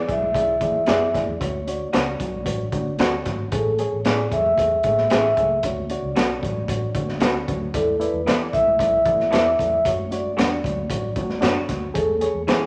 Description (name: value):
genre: uptempo 1960s-style soul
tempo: 114 BPM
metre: 4/4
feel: straight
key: unclear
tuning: A4 = 440 Hz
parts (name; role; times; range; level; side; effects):
- vibraphone with soft mallets; melody; 0.0-12.7 s; A4 to E5; -24 LUFS; equal; none
- reed electric piano; accompaniment; 0.0-12.7 s; D4 to D5; -31 LUFS; equal; none
- vintage muted fingered electric bass; bass; 0.0-12.7 s; G#1 to F#3; -33 LUFS; equal; none
- crunchy breakbeat drum kit; drums; 0.1-12.6 s; hi-hat, kick drum, snare drum; -28 LUFS; equal; none
- congas; percussion; 0.1-12.6 s; none; -36 LUFS; equal; none
- electric guitar through a small old amp; stabs; 0.9-12.6 s; A3 to D5; -29 LUFS; equal; none
room: moderate large studio reverb, RT60 1.1 s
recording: none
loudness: -21 LUFS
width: mono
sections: 0.0-12.7 A section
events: none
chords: 0.0 E7; 1.4 Dmaj7; 3.5 Amaj7; 5.6 Dmaj7; 7.7 E7sus4; 9.9 Dmaj7; 12.0 Amaj7/E